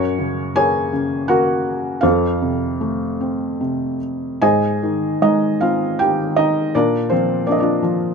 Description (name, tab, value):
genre	classical, lyrical solo piano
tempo	74-84 BPM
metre	3/4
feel	rubato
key	unclear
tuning	A4 = 440 Hz
part	felt-muted upright piano	solo	0.0-8.1 s	F2 to Ab5	-16 LUFS	equal	none
room	little or no reverb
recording	close, detailed microphones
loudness	-16 LUFS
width	side -5 dB against mid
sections	0.0-8.1 A section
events	none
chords	0.0 Gb; 2.0 F; 4.4 Ab; 6.7 Bb